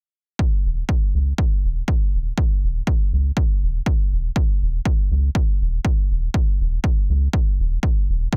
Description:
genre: acid house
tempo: 121 BPM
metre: 4/4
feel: swing 54% on 16ths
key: unclear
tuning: A4 = 439 Hz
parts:
  - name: electronic kick drum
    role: drums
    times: 0.4-8.4 s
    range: none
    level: -22 LUFS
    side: equal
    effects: none
  - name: round analog bass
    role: bass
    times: 0.6-8.3 s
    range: Eb1 to Db2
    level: -23 LUFS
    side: equal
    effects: sidechain pumping
room: little or no reverb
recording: dense, heavily limited modern master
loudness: -21 LUFS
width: mono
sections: 0.4-8.4 A section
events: none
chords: none

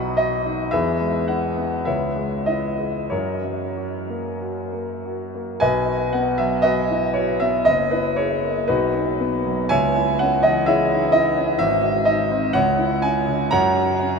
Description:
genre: classical, romantic character piece for solo piano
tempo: 45-66 BPM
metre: 2/4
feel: rubato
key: B major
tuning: A4 = 444 Hz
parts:
  - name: warm concert grand piano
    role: solo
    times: 0.0-14.2 s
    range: F#1 to B5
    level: -18 LUFS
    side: equal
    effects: none
room: wet huge ambient reverb, RT60 7.0 s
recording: in a vast, echoing space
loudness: -18 LUFS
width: side -5 dB against mid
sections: 0.0-5.6 A section; 5.6-14.2 B section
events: none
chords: 0.0 B; 0.7 E; 1.9 C#m7; 3.1 F#; 5.6 B; 7.7 F#9; 8.7 B; 9.7 C#m; 11.6 G#7; 12.5 C#m; 13.5 F#

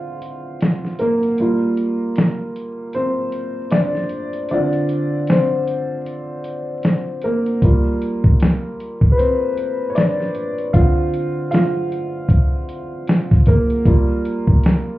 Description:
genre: lo-fi hip hop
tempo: 77 BPM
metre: 4/4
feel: swing 59% on 16ths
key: G minor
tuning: A4 = 438 Hz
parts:
  - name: clear upright piano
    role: accompaniment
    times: 0.0-15.0 s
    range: D3 to F5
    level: -20 LUFS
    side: equal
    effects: low-pass filter
  - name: lo-fi sampler-style drum kit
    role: drums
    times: 0.2-14.9 s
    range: hi-hat, kick drum, snare drum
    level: -14 LUFS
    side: equal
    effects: none
room: moderate studio reverb, RT60 0.5 s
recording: heard muffled through a wall, club reverb, vinyl crackle, EQ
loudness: -16 LUFS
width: side -16 dB against mid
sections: 0.0-15.0 A section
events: break 0.0-7.6; upright piano solo 0.0-15.0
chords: 0.0 Dm7; 1.4 Gm7; 4.5 Dm7; 7.6 Gm7; 10.7 Dm7; 13.9 Gm7

